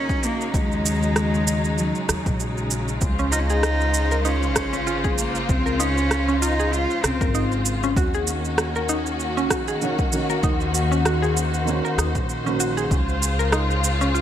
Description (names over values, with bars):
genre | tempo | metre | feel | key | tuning
organic downtempo | 97 BPM | 4/4 | swing 56% on 16ths | Eb dorian | A4 = 438 Hz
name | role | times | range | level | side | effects
warm cello | melody | 0.0-7.7 s | Gb3 to F4 | -25 LUFS | equal | digital delay
rich studio string section | sustained chords | 0.0-14.2 s | Db3 to C5 | -26 LUFS | left 1 dB | vintage 12-bit sampler grit, sidechain pumping
upright bass | bass | 0.0-14.2 s | Ab1 to Eb2 | -25 LUFS | equal | sidechain pumping
electronic kick drum | drums | 0.1-13.0 s | none | -25 LUFS | equal | overdrive
electronic shaker and rim click | drums | 0.1-14.2 s | none | -26 LUFS | right 2 dB | overdrive
mallet-like synth pluck | arpeggios | 3.2-14.2 s | Db4 to Bb4 | -27 LUFS | equal | chorus, digital delay
felt-muted upright piano | accompaniment | 9.8-12.9 s | Eb3 to Gb4 | -28 LUFS | right 2 dB | analog chorus, sidechain pumping, digital delay
room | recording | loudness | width
moderate plate reverb, RT60 2.0 s | bright 1980s-style digital production | -19 LUFS | side -10 dB against mid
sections
0.0-14.2 A section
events
none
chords
0.0 Ebm7; 3.0 Dbmaj7; 8.0 Ebm7; 12.9 Dbmaj7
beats
| 0.54 1.16 1.78 2.40 | 3.01 3.63 4.25 4.87 | 5.49 6.11 6.72 7.34 | 7.96 8.58 9.20 9.82 | 10.44 11.05 11.67 12.29 | 12.91 13.53 14.15